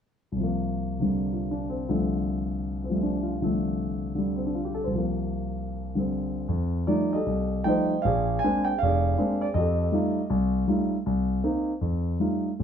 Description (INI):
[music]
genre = solo jazz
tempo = 158 BPM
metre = 4/4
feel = swing 67% on 8ths, rubato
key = F mixolydian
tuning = A4 = 436 Hz
[part]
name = dark concert grand piano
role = solo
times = 0.3-12.6 s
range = F1 to Ab5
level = -24 LUFS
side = equal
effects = none
[sound]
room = moderate small room reverb, RT60 0.5 s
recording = dark, warm production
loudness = -24 LUFS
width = side -8 dB against mid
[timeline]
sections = 0.4-6.5 A section; 6.5-12.6 B section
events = none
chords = 0.4 C7sus4; 1.9 F69/C; 4.9 C7sus4; 6.5 F9; 8.0 Bb9; 9.6 F9; 11.1 Cm7; 11.8 F9